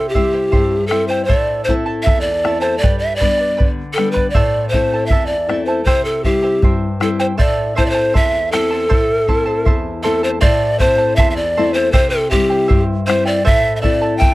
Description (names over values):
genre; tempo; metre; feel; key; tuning
andean folk, Andean ensemble; 79 BPM; 2/4; straight; A minor; A4 = 440 Hz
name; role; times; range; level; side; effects
breathy mellow pan flute; melody; 0.0-14.3 s; G4 to G5; -16 LUFS; equal; none
charango; accompaniment; 0.0-14.3 s; E4 to B5; -24 LUFS; right 4 dB; none
nylon-string guitar; accompaniment; 0.0-14.3 s; E2 to E4; -21 LUFS; left 3 dB; none
bombo; percussion; 0.1-14.3 s; none; -16 LUFS; equal; none
room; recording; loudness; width
light reverb; dry, close 1970s-style studio recording; -13 LUFS; side -18 dB against mid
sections
0.0-10.4 A section; 10.4-14.3 A section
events
none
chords
0.0 C; 1.3 Am; 2.8 G; 4.4 Am; 5.9 C; 7.4 Am; 11.9 C; 13.5 Am